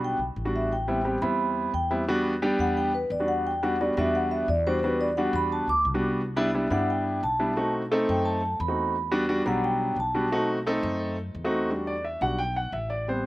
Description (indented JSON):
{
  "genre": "Afro-Cuban jazz",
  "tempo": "175 BPM",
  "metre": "4/4",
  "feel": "straight",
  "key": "E minor",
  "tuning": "A4 = 440 Hz",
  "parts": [
    { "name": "vibraphone with soft mallets", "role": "melody", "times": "0.0-10.5 s", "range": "B4 to D6", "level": "-27 LUFS", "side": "equal", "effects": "none" },
    { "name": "warm grand piano", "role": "accompaniment", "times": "0.0-13.3 s", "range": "F#3 to G5", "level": "-26 LUFS", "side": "equal", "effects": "none" },
    { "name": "upright bass", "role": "bass", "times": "0.0-13.3 s", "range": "A1 to G2", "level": "-33 LUFS", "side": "left 1 dB", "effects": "none" }
  ],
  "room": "little or no reverb",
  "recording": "recorded outdoors, with no room sound",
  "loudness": "-24 LUFS",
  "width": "side -17 dB against mid",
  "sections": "0.0-11.7 A section; 11.7-13.3 A section",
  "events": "vibraphone solo 0.0-11.7; grand piano solo 11.7-13.3",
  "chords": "0.0 Em9; 0.7 Am9; 2.1 Em9; 6.2 Cmaj7; 7.6 B7b9; 8.9 Em9; 10.3 B7b9; 11.7 Em9",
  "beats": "0.03 0.37 | 0.71 1.06 1.40 1.74 | 2.08 2.43 2.77 3.11 | 3.46 3.80 4.14 4.49 | 4.83 5.17 5.51 5.86 | 6.20 6.55 6.89 7.23 | 7.58 7.92 8.26 8.61 | 8.95 9.29 9.64 9.98 | 10.32 10.67 11.01 11.36 | 11.70 12.04 12.39 12.73 | 13.08"
}